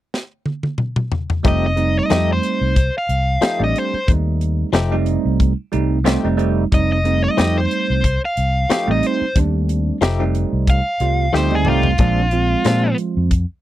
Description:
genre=straight-eighth soul blues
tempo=91 BPM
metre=4/4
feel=swing 54% on 16ths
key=F mixolydian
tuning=A4 = 441 Hz
part: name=tight funk drum kit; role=drums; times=0.1-13.5 s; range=hi-hat, kick drum, snare drum, toms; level=-18 LUFS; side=equal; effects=none
part: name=bell-like tine electric piano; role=accompaniment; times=1.4-13.3 s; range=F3 to F4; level=-21 LUFS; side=right 6 dB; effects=phaser
part: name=direct-recorded clean electric guitar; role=stabs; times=1.4-12.9 s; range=Bb2 to G4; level=-21 LUFS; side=left 6 dB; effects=tremolo
part: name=fingered electric bass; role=bass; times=1.4-13.4 s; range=F1 to Bb2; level=-19 LUFS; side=left 1 dB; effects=none
part: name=overdriven electric guitar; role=melody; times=1.5-13.0 s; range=F4 to F5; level=-20 LUFS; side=equal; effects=none
room=little or no reverb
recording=dry, close 1970s-style studio recording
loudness=-15 LUFS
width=side -14 dB against mid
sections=0.0-1.4 A section; 1.4-13.6 B section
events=drum fill 0.1-1.4, 11.3-12.0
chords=0.0 N.C.; 1.4 F9; 12.0 Bb9

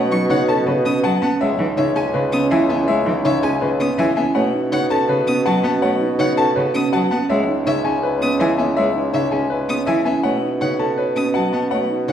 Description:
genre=classical, minimalist pattern music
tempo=163 BPM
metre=4/4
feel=straight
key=B mixolydian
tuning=A4 = 441 Hz
part: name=clear concert grand piano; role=melody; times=0.0-12.1 s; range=B4 to A5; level=-22 LUFS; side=left 6 dB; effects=none
part: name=rich cello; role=accompaniment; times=0.0-12.1 s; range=C#3 to C#4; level=-24 LUFS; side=right 1 dB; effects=none
part: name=buzzing marimba with soft mallets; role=arpeggios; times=0.0-12.1 s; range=C#4 to C#5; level=-21 LUFS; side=right 4 dB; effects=none
part: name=warm bassoon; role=bass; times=0.0-12.1 s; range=C#2 to B2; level=-22 LUFS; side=right 1 dB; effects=none
part: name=warm violin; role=arpeggios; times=0.1-12.1 s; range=E5 to D#6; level=-27 LUFS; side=left 2 dB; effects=none
room=wet recital hall reverb, RT60 1.9 s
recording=recorded in a church or concert hall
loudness=-16 LUFS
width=side -9 dB against mid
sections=0.0-12.1 A section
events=none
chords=0.0 B7; 1.4 C#m7; 4.3 B7; 7.3 C#m7; 10.2 B7

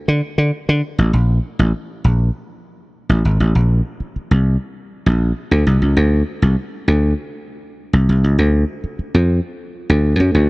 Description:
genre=funk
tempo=99 BPM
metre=4/4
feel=straight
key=unclear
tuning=A4 = 440 Hz
part: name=dry thumbed slap bass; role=solo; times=0.1-10.5 s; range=Ab1 to D3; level=-14 LUFS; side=equal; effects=none
room=little or no reverb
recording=dry, close 1970s-style studio recording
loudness=-14 LUFS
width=side -24 dB against mid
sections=0.0-1.1 A section; 1.1-10.5 B section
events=none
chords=none

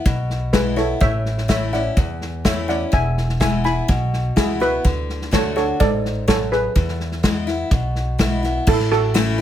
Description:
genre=honky-tonk and classic country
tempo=125 BPM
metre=4/4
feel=straight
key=A major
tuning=A4 = 440 Hz
part: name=steel pan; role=melody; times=0.0-9.4 s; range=E4 to B5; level=-22 LUFS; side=right 2 dB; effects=none
part: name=picked steel-string acoustic guitar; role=accompaniment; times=0.0-9.4 s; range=E2 to F#4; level=-24 LUFS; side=left 4 dB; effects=none
part: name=upright bass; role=bass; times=0.1-9.4 s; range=E1 to E2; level=-23 LUFS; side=equal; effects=none
part: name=natural country drum kit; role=drums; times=0.1-9.4 s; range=crash cymbal, hi-hat, kick drum, snare drum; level=-21 LUFS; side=equal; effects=none
room=light reverb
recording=none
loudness=-17 LUFS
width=side -11 dB against mid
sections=0.0-8.7 A section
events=none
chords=0.0 E; 1.0 A; 2.9 E; 4.8 D; 6.8 E; 8.7 A

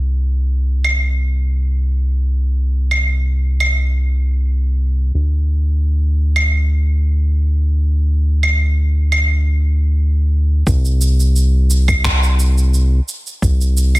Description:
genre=sunset chillout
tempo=87 BPM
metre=4/4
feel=straight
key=unclear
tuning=A4 = 440 Hz
part: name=round analog bass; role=bass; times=0.0-14.0 s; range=C2 to D2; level=-14 LUFS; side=equal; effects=none
part: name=electronic claves, shaker and finger snaps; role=drums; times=0.8-14.0 s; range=none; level=-20 LUFS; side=right 2 dB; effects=none
part: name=electronic kick drum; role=drums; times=10.7-13.6 s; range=none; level=-17 LUFS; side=equal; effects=none
room=little or no reverb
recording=none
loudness=-14 LUFS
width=side -19 dB against mid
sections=0.0-10.7 A section; 10.7-14.0 B section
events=none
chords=none

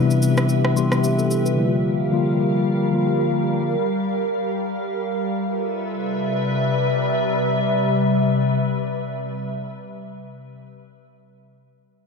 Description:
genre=amapiano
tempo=free time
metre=none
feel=none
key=C major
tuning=A4 = 438 Hz
part: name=mellow tine electric piano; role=accompaniment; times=0.0-3.8 s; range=C3 to C6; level=-19 LUFS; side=left 3 dB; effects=medium stereo tremolo
part: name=glassy FM pad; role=sustained chords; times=0.0-10.6 s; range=C3 to F5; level=-21 LUFS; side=equal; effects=ensemble chorus, built-in reverb
part: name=electronic shaker and rim click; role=drums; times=0.1-1.6 s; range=none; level=-28 LUFS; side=equal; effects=overdrive
room=light reverb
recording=none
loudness=-19 LUFS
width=side -4 dB against mid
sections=0.0-5.9 A section; 5.9-10.2 B section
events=tine electric piano fill 0.5-1.6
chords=0.0 Cmaj7; 1.6 Gm7; 5.4 G13; 5.9 Cmaj7

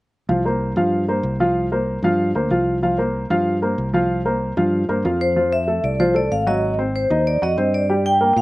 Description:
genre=Afro-Cuban jazz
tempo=189 BPM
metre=4/4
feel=straight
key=unclear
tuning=A4 = 440 Hz
part: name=warm upright piano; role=accompaniment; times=0.3-8.4 s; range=F3 to Gb5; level=-20 LUFS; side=equal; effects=none
part: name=fingered electric bass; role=bass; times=0.3-8.4 s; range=Ab1 to Bb2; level=-23 LUFS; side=equal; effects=none
part: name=vibraphone with medium hard mallets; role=melody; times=5.2-8.4 s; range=C5 to G5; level=-19 LUFS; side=equal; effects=none
room=little or no reverb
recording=recorded outdoors, with no room sound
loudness=-17 LUFS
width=side -19 dB against mid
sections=0.3-5.4 A section; 5.4-8.4 B section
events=none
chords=0.3 C7sus4; 5.4 F; 6.6 Ab7; 7.9 Gm

